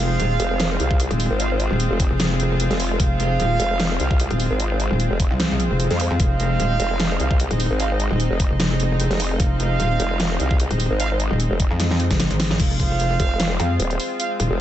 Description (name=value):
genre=heavy wobble dubstep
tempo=150 BPM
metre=4/4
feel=swing 55% on 16ths, half-time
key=F minor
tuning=A4 = 436 Hz
part: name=lush unison pad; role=sustained chords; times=0.0-14.6 s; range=Ab3 to F4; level=-26 LUFS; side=equal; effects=chorus, sidechain pumping
part: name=mellow brass ensemble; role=stabs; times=0.0-14.3 s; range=F4 to F5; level=-27 LUFS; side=right 6 dB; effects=dub echo
part: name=metallic wobble bass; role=bass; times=0.0-14.5 s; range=Eb1 to F2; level=-21 LUFS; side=equal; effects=distortion, chorus, overdrive
part: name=dubstep drum kit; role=drums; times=0.0-14.5 s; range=crash cymbal, hi-hat, snare drum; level=-26 LUFS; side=equal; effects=overdrive
part: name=vowel-sweep wobble bass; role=bass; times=0.4-14.6 s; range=Eb1 to F2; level=-22 LUFS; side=equal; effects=chorus, overdrive
part: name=electronic kick drum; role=drums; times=0.9-13.3 s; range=none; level=-20 LUFS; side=equal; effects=overdrive
room=light reverb, digital ambience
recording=nothing above 8.0 kHz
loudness=-18 LUFS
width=side -12 dB against mid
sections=0.0-12.6 A section; 12.6-14.6 A section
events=drop 0.0-12.6, 12.6-14.6; drum fill 11.8-12.6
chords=0.0 Fm